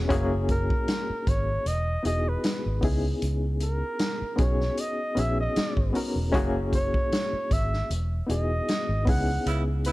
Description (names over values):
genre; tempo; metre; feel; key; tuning
lush 1970s-style soul; 77 BPM; 4/4; swing 54% on 16ths; B major; A4 = 439 Hz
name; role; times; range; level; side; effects
reed electric piano; accompaniment; 0.0-9.9 s; G#3 to B4; -30 LUFS; left 2 dB; tremolo
vintage muted fingered electric bass; bass; 0.0-9.9 s; E1 to C#2; -27 LUFS; equal; none
vintage drum kit; drums; 0.1-9.9 s; hi-hat, kick drum, snare drum; -28 LUFS; equal; none
breathy flugelhorn; melody; 0.5-9.9 s; A#4 to F#5; -31 LUFS; right 1 dB; none
clear horn section; stabs; 9.5-9.9 s; C#3 to E4; -32 LUFS; right 3 dB; none
room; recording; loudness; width
studio reverb; dark, warm production; -24 LUFS; side -18 dB against mid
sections
0.0-9.9 A section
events
band accent 9.5-9.9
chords
0.1 F#7; 1.7 Emaj9; 2.8 C#m7; 4.4 B69; 6.3 F#7; 7.9 Emaj9; 9.1 C#m7